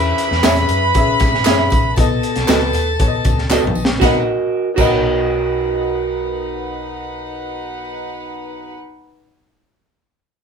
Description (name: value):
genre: uptempo 1960s-style soul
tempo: 117 BPM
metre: 4/4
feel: straight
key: B major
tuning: A4 = 441 Hz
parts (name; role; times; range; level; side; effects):
- warm studio violin section; second line; 0.0-8.7 s; D#4 to B5; -21 LUFS; equal; none
- warm upright piano; accompaniment; 0.0-8.8 s; B1 to E5; -24 LUFS; left 4 dB; none
- hollow-body short-scale fingered electric bass; bass; 0.0-8.7 s; A#1 to G#2; -24 LUFS; equal; none
- crunchy breakbeat drum kit; drums; 0.2-4.9 s; crash cymbal, hi-hat, kick drum, snare drum, toms; -18 LUFS; equal; none
- tambourine and handclaps; percussion; 0.2-4.9 s; none; -28 LUFS; equal; none
- electric guitar through a small old amp; stabs; 0.4-8.8 s; F#4 to E5; -20 LUFS; right 4 dB; none
room: moderate small room reverb, RT60 0.5 s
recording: band playing live in one room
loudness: -14 LUFS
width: side -6 dB against mid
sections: 0.0-4.0 A section; 4.0-8.1 B section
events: drum fill 3.5-4.0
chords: 0.0 E6; 2.0 B7; 4.0 Bmaj7